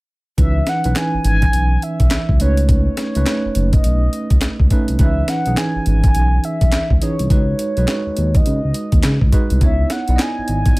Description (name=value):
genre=R&B, new jack swing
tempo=104 BPM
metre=4/4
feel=swing 62% on 16ths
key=C# minor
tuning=A4 = 440 Hz
part: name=mellow horn-like synth lead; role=melody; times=0.4-10.8 s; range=C#5 to G#5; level=-24 LUFS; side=equal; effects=chorus
part: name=bright tine electric piano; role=accompaniment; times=0.4-10.8 s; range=E3 to D#5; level=-22 LUFS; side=right 2 dB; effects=medium tremolo
part: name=smooth synth bass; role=bass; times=0.4-10.8 s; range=F#1 to C#3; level=-17 LUFS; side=equal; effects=none
part: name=breakbeat sampler-style drum kit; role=drums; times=0.4-10.8 s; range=handclaps, hi-hat, kick drum, snare drum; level=-16 LUFS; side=equal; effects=none
room=little or no reverb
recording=none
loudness=-14 LUFS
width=side -22 dB against mid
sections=0.4-10.8 A section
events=none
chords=0.4 C#m9; 2.4 B9; 5.0 C#m9; 7.3 G#m7; 9.6 C#m9